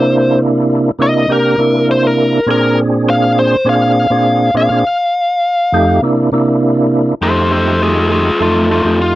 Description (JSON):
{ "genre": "blues", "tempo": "101 BPM", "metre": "4/4", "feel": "swing 54% on 16ths", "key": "unclear", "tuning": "A4 = 441 Hz", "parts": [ { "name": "biting lead guitar", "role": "melody", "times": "0.0-9.2 s", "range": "A3 to F5", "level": "-13 LUFS", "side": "left 2 dB", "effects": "overdrive" }, { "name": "percussive tonewheel organ", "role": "accompaniment", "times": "0.0-9.2 s", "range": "F2 to A4", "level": "-12 LUFS", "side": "right 1 dB", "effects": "slow rotary speaker, overdrive, chorus vibrato" } ], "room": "light reverb", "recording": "dry, close 1970s-style studio recording", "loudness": "-10 LUFS", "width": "side -15 dB against mid", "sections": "0.0-7.2 A section; 7.2-9.2 B section", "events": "lead electric guitar solo 0.0-7.2", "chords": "0.0 C7; 2.5 Bb7; 4.8 F7; 6.0 C7; 7.2 F7" }